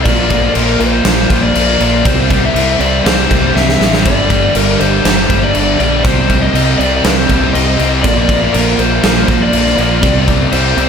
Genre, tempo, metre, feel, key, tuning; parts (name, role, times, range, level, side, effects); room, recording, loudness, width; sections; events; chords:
hard rock; 120 BPM; 4/4; straight; A4 = 440 Hz
lead guitar through a small cranked amp; melody; 0.0-10.9 s; Bb4 to E5; -16 LUFS; left 2 dB; overdrive, slapback echo
tonewheel organ; sustained chords; 0.0-10.9 s; G3 to Eb5; -27 LUFS; equal
crunchy overdriven guitar; riff; 0.0-10.9 s; G2 to C4; -19 LUFS; right 9 dB; slapback echo
scooped high-gain guitar; riff; 0.0-10.9 s; G2 to C4; -19 LUFS; left 10 dB; distortion, slapback echo
sludgy distorted guitar; riff; 0.0-10.9 s; G2 to C4; -19 LUFS; left 1 dB; overdrive, slapback echo
modern bright fingered electric bass; bass; 0.1-10.9 s; G1 to C2; -17 LUFS; equal
big rock drum kit; drums; 0.1-10.9 s; crash cymbal, kick drum, snare drum; -14 LUFS; equal
moderate scoring stage reverb, RT60 1.9 s, small room ambience; big arena sound; -9 LUFS; side -7 dB against mid
0.0-10.9 A section
drum fill 3.6-4.0
0.1 Bb; 2.1 C5; 4.0 G5; 6.0 Cm; 8.0 Bb; 10.0 C5